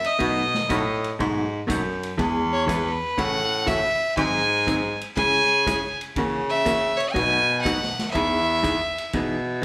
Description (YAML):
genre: country, western swing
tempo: 121 BPM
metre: 4/4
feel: swing 68% on 8ths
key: E major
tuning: A4 = 440 Hz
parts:
  - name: clear fiddle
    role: melody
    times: 0.0-9.6 s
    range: B4 to G#5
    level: -25 LUFS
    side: equal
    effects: none
  - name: swinging big-band drum kit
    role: drums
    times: 0.0-9.6 s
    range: hi-hat, kick drum, ride cymbal, snare drum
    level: -36 LUFS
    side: equal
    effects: none
  - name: vintage hollow-body jazz guitar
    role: accompaniment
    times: 0.2-9.6 s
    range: B2 to G#4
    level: -30 LUFS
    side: equal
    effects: none
  - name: warm baritone saxophone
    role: bass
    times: 0.2-9.6 s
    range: E2 to C#3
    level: -28 LUFS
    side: equal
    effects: none
room: light reverb, small room ambience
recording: live gig heard through the venue's PA, club reverb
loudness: -23 LUFS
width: mono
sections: 0.0-9.6 A section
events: none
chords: 0.2 B7; 2.2 E; 3.2 A6; 4.2 G#7; 5.2 C#m; 6.2 F#7/C#; 7.2 B7; 8.1 Emaj7